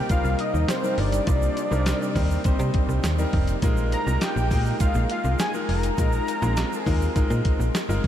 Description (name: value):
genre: early-eighties boogie funk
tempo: 102 BPM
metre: 4/4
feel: straight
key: unclear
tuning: A4 = 440 Hz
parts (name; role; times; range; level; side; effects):
- fat analog lead; melody; 0.0-7.4 s; C5 to Bb5; -29 LUFS; equal; chorus, tape echo
- bright grand piano; accompaniment; 0.0-8.1 s; G3 to C5; -29 LUFS; left 3 dB; none
- lush unison pad; sustained chords; 0.0-8.1 s; C3 to D5; -32 LUFS; equal; chorus
- slap-like FM bass; bass; 0.0-8.1 s; F1 to C3; -24 LUFS; equal; none
- clean 12-bit digital drum machine; drums; 0.1-8.1 s; handclaps, hi-hat, kick drum, snare drum; -26 LUFS; equal; none
- tube shaker; percussion; 0.1-8.0 s; none; -44 LUFS; right 10 dB; none
room: moderate huge ambient reverb, RT60 7.7 s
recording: dreamy mix soaked in reverb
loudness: -21 LUFS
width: side -10 dB against mid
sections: 0.0-8.1 A section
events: none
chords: 0.0 Cm7; 3.6 Bb7sus4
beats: 0.10 0.69 | 1.28 1.86 2.45 3.04 | 3.63 4.22 4.81 5.39 | 5.98 6.57 7.16 7.75